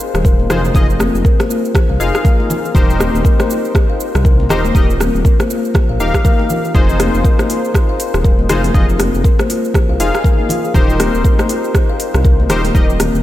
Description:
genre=afro house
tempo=120 BPM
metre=4/4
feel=swing 58% on 16ths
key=F minor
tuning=A4 = 439 Hz
part: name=warm analog keys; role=stabs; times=0.0-12.9 s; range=Eb4 to F5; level=-20 LUFS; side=left 2 dB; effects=chorus, sidechain pumping, tape echo
part: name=afro-pop drum kit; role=drums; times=0.0-13.2 s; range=hi-hat, rim click, shaker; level=-22 LUFS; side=right 1 dB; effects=studio reverb
part: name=kalimba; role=arpeggios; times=0.1-13.1 s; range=C4 to F5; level=-21 LUFS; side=left 3 dB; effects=sidechain pumping, tape echo
part: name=dark detuned saw bass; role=bass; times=0.1-13.2 s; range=Eb1 to C2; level=-17 LUFS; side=equal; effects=sidechain pumping
part: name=electronic kick drum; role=drums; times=0.2-12.9 s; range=none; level=-12 LUFS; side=equal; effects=studio reverb
part: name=congas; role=percussion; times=0.4-13.1 s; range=none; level=-22 LUFS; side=left 2 dB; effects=none
room=light reverb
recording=none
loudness=-11 LUFS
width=side -14 dB against mid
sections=0.0-13.2 A section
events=none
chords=0.0 Fm7; 2.8 Eb6; 6.8 Fm7; 10.8 Eb6

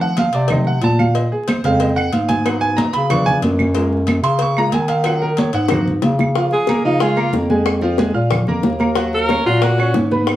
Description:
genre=Afro-Cuban jazz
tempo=184 BPM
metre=4/4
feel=straight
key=Db major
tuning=A4 = 440 Hz
part: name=clear grand piano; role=accompaniment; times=0.0-10.4 s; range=Db3 to F6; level=-20 LUFS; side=right 2 dB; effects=none
part: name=mellow bass clarinet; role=bass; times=0.0-10.4 s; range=Eb2 to F3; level=-18 LUFS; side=equal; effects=none
part: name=congas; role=percussion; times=0.0-10.4 s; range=none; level=-21 LUFS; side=equal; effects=none
part: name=cowbell and bongos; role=percussion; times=0.2-10.4 s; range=none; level=-25 LUFS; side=left 6 dB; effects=none
part: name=claves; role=percussion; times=0.5-10.4 s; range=none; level=-28 LUFS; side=right 4 dB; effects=none
part: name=clear alto saxophone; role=melody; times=6.5-10.0 s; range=Eb4 to Bb4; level=-18 LUFS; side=equal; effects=none
room=wet studio reverb, RT60 0.5 s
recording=heard from further back in the room, vinyl crackle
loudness=-14 LUFS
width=side -13 dB against mid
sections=0.0-6.4 A section; 6.4-10.4 A section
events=grand piano solo 0.0-6.4; drum fill 5.7-6.4; alto saxophone solo 6.4-10.4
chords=0.0 F7; 1.2 Bbm9; 2.5 Abm7; 3.1 Db7b9; 3.8 Gbmaj9; 5.1 Ebm7; 5.7 Ab7; 6.4 Db6; 7.7 Fmadd11; 8.3 Bb5; 9.0 Ebm7

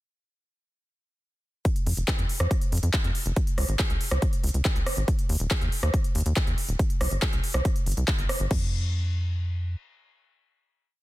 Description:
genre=uplifting trance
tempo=140 BPM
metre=4/4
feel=straight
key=unclear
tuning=A4 = 440 Hz
part: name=big-room dance drum kit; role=drums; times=1.7-8.6 s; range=crash cymbal, handclaps, hi-hat, rim click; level=-31 LUFS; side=equal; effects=none
part: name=electronic kick drum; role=drums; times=1.7-8.6 s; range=none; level=-25 LUFS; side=equal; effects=overdrive
part: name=tight sequencer bass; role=bass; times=1.9-9.8 s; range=Eb1 to F2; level=-26 LUFS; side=equal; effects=sidechain pumping
room=little or no reverb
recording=dense, heavily limited modern master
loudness=-23 LUFS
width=side -17 dB against mid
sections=1.7-8.5 drop; 8.5-11.0 final chord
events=drop 1.7-8.5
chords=none

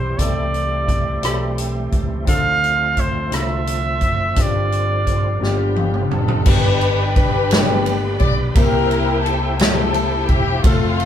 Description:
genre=slow gospel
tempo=57 BPM (dotted quarters)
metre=6/8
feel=straight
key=C major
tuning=A4 = 445 Hz
part: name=clear trumpet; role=melody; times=0.0-5.8 s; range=C5 to F5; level=-21 LUFS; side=right 3 dB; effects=none
part: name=clear concert grand piano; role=accompaniment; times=0.0-11.1 s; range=G2 to B5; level=-26 LUFS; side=left 4 dB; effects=none
part: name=bright tonewheel organ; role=sustained chords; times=0.0-11.1 s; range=D3 to C6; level=-28 LUFS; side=right 3 dB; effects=fast rotary speaker, chorus vibrato
part: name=fingered electric bass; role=bass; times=0.0-11.1 s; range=E1 to D2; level=-22 LUFS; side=equal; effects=none
part: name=swinging big-band drum kit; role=drums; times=0.2-11.1 s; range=crash cymbal, hi-hat, kick drum, ride cymbal, rim click, snare drum, toms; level=-19 LUFS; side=equal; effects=none
part: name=dark studio string section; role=melody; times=5.4-11.1 s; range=A3 to D5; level=-21 LUFS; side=left 2 dB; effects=none
room=moderate large studio reverb, RT60 0.9 s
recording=band playing live in one room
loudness=-15 LUFS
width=side -9 dB against mid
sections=0.0-6.5 A section; 6.5-11.1 B section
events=drum fill 5.4-6.5; grand piano fill 5.4-6.5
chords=0.2 Am7/C; 2.3 Dm7; 4.4 G7sus4; 5.4 G7; 6.5 G; 8.6 C7

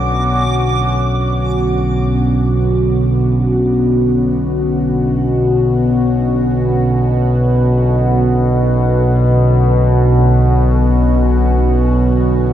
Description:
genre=dark ambient drone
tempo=free time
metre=none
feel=none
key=B minor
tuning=A4 = 440 Hz
part: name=sweeping resonant pad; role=sustained chords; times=0.0-12.5 s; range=D3 to F#4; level=-18 LUFS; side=equal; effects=chorus, phaser
part: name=analog drone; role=drone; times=0.0-12.5 s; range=B1 to B2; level=-13 LUFS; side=equal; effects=chorus
part: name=backwards swelling texture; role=texture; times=0.0-0.5 s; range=D6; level=-23 LUFS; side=right 2 dB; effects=built-in reverb, shimmer reverb
room=wet huge ambient reverb, RT60 9.3 s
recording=none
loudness=-12 LUFS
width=side -11 dB against mid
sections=0.5-12.5 A section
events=fade-out on analog synth pad 0.5-12.5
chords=0.5 Bmadd9

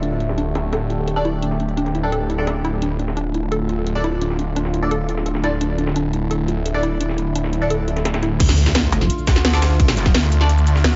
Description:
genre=dark technical drum and bass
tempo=172 BPM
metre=4/4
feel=straight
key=D minor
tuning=A4 = 440 Hz
part: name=sweeping resonant pad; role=sustained chords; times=0.0-11.0 s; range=D3 to G4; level=-28 LUFS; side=equal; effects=chorus, phaser, sidechain pumping
part: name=warbly dusty pluck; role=arpeggios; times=0.0-8.3 s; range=D4 to A4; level=-29 LUFS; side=equal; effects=chorus, sidechain pumping, digital delay
part: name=snarling distorted saw bass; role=bass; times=0.0-10.8 s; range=D1 to D2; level=-23 LUFS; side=equal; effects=distortion, overdrive, sidechain pumping
part: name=breakbeat sampler-style drum kit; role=drums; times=0.0-11.0 s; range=hi-hat, snare drum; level=-32 LUFS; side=equal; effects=high-pass filter on hats, low-pass filter on hats, high-pass filter on snare, low-pass filter on snare
part: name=drum and bass drum kit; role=drums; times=0.0-11.0 s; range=crash cymbal, hi-hat, shaker, snare drum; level=-26 LUFS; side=equal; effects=low-pass filter on hats, low-pass filter on cymbals, low-pass filter on perc, low-pass filter on snare, low-pass filter on room
part: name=band-passed chord stab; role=stabs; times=1.2-10.5 s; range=D4 to D5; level=-29 LUFS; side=equal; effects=phaser, lush chorus, digital delay
part: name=electronic kick drum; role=drums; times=8.4-10.1 s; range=none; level=-18 LUFS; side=equal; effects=none
part: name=impact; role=sound effects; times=8.4-9.8 s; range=none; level=-26 LUFS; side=equal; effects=none
part: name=metallic wobble bass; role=bass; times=8.9-11.0 s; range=F1 to D2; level=-20 LUFS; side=equal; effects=chorus
room=light reverb, digital ambience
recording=nothing above 7.6 kHz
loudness=-20 LUFS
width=mono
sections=0.0-8.4 A section; 8.4-11.0 B section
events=filter sweep on synth arpeggio sound 0.0-8.4; drop 8.4-11.0; impact 8.4-9.8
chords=0.0 Dm

